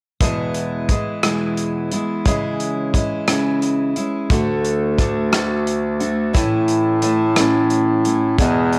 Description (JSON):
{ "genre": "folk rock and heartland rock", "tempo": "59 BPM (dotted quarters)", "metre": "6/8", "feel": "straight", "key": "E mixolydian", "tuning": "A4 = 440 Hz", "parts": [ { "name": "picked steel-string acoustic guitar", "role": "accompaniment", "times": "0.2-8.8 s", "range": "E2 to F#4", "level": "-23 LUFS", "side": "equal", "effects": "none" }, { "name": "loose indie drum kit", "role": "drums", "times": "0.2-8.8 s", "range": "hi-hat, kick drum, rim click", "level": "-23 LUFS", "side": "equal", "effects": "none" }, { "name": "clear bass clarinet", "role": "bass", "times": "4.3-8.8 s", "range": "D2 to A2", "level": "-20 LUFS", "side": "equal", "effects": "none" } ], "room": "light reverb", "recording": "none", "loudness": "-19 LUFS", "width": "mono", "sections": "0.2-8.4 A section", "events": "none", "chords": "0.2 E; 2.2 C#m; 4.3 D; 6.3 A" }